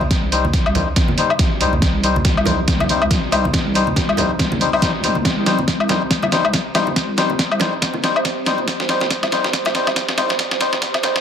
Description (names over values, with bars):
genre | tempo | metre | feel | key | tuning
deep dubstep | 140 BPM | 4/4 | swing 58% on 16ths, half-time | C minor | A4 = 440 Hz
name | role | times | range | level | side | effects
deep dark ambient pad | sustained chords | 0.1-11.2 s | C4 to Eb5 | -27 LUFS | right 2 dB | chorus, built-in reverb
melodica | stabs | 0.0-11.2 s | G3 to C5 | -22 LUFS | left 5 dB | vintage 12-bit sampler grit, low-pass filter, dub echo
deep soft wobble bass | bass | 0.0-11.2 s | C2 | -24 LUFS | equal | chorus
congas | percussion | 0.0-11.1 s | none | -26 LUFS | right 2 dB | dub echo
electronic kick drum | drums | 0.1-10.9 s | none | -20 LUFS | equal | none
trip hop sampler-style drum kit | drums | 0.1-11.2 s | hi-hat, snare drum, woodblock | -19 LUFS | equal | overdrive
room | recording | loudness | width
moderate spring reverb, RT60 1.2 s, digital ambience | dense, heavily limited modern master, high-pass filter | -15 LUFS | side -8 dB against mid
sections
0.0-11.2 A section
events
build-up 0.0-11.2; drum fill 0.0-11.2; filter sweep on ambient pad 0.0-11.2; filter sweep 0.0-11.2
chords
0.0 Cm